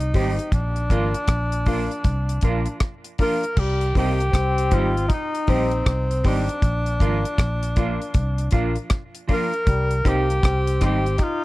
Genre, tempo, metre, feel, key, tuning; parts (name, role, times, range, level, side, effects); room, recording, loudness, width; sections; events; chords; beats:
roots reggae; 79 BPM; 4/4; swing 64% on 16ths; C minor; A4 = 435 Hz
breathy tenor saxophone; melody; 0.0-11.4 s; C4 to Bb4; -26 LUFS; equal; tape echo
vintage muted fingered electric bass; bass; 0.0-11.2 s; Ab1 to C2; -23 LUFS; equal
deep reggae drum kit; drums; 0.0-11.4 s; crash cymbal, hi-hat, kick drum, rim click; -22 LUFS; equal
clean electric guitar; accompaniment; 0.1-11.0 s; F3 to G4; -29 LUFS; right 4 dB; tremolo, tape echo
warm upright piano; stabs; 0.1-11.0 s; D4 to C5; -29 LUFS; left 6 dB
warm trombone; second line; 3.6-11.4 s; G3 to Eb4; -29 LUFS; left 5 dB; tape echo
little or no reverb; dry, close 1970s-style studio recording; -19 LUFS; side -18 dB against mid
0.0-3.6 A section; 3.6-11.4 B section
0.0 Cm; 0.5 Bb; 3.6 Cm; 6.6 Bb; 9.7 Cm
| 0.52 1.29 2.05 2.81 | 3.57 4.34 5.10 5.86 | 6.62 7.38 8.15 8.91 | 9.67 10.43 11.19